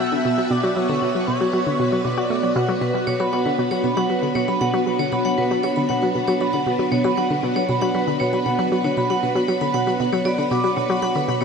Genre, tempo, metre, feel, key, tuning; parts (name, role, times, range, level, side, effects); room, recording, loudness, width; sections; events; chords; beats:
ambient, sequencer-driven space music; 117 BPM; 4/4; straight; B minor; A4 = 440 Hz
expressive synth lead; melody; 0.0-2.8 s; C#5 to F#5; -26 LUFS; equal; analog chorus, ping-pong delay
string machine, full ensemble; sustained chords; 0.0-11.4 s; B3 to E5; -24 LUFS; right 1 dB; ensemble chorus
analog pluck; riff; 0.0-11.4 s; B2 to F#4; -23 LUFS; left 1 dB; chorus, ping-pong delay
pulsing gated texture; texture; 0.1-11.4 s; F#5 to B5; -37 LUFS; equal
vibraphone with hard mallets; arpeggios; 2.8-11.4 s; B4 to D6; -23 LUFS; right 1 dB; auto-pan, ping-pong delay
wet huge ambient reverb, RT60 8.4 s; in a vast, echoing space, nothing above 10.8 kHz; -18 LUFS; side -6 dB against mid
0.0-11.4 A section
0.0 Bmadd9
0.25 | 0.77 1.28 1.79 2.31 | 2.82 3.33 3.84 4.36 | 4.87 5.38 5.89 6.41 | 6.92 7.43 7.95 8.46 | 8.97 9.48 10.00 10.51 | 11.02